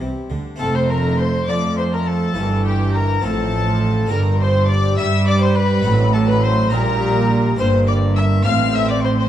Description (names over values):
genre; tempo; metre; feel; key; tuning
classical, baroque-style concerto movement with solo episodes; 69 BPM (dotted quarters); 6/8; straight; F major; A4 = 438 Hz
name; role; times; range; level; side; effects
warm chamber violin section; melody; 0.0-9.3 s; D4 to F6; -27 LUFS; left 7 dB; none
dark chamber viola section; accompaniment; 0.0-9.3 s; E3 to C4; -25 LUFS; left 1 dB; none
harpsichord; accompaniment; 0.0-9.3 s; F2 to Bb4; -32 LUFS; left 1 dB; none
rich chamber double bass section; bass; 0.0-9.3 s; F1 to G2; -20 LUFS; right 2 dB; none
warm chamber cello section; bass; 0.0-9.3 s; F2 to G3; -20 LUFS; right 2 dB; none
rich violin; melody; 0.6-9.3 s; G4 to F5; -24 LUFS; left 2 dB; none
warm chamber violin section; second line; 0.6-9.3 s; G4 to F5; -25 LUFS; left 2 dB; none
room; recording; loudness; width
moderate recital hall reverb, RT60 1.3 s; dark, warm production; -15 LUFS; side -11 dB against mid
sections
0.6-9.3 A section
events
none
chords
0.0 C; 0.6 F; 2.4 Edim/G; 3.2 F/A; 4.1 Gm; 5.9 F#dim/A; 6.7 Gm/Bb; 7.6 Edim/G; 8.5 F/A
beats
| 0.60 1.49 | 2.37 3.24 | 4.11 4.98 | 5.86 6.73 | 7.59 8.46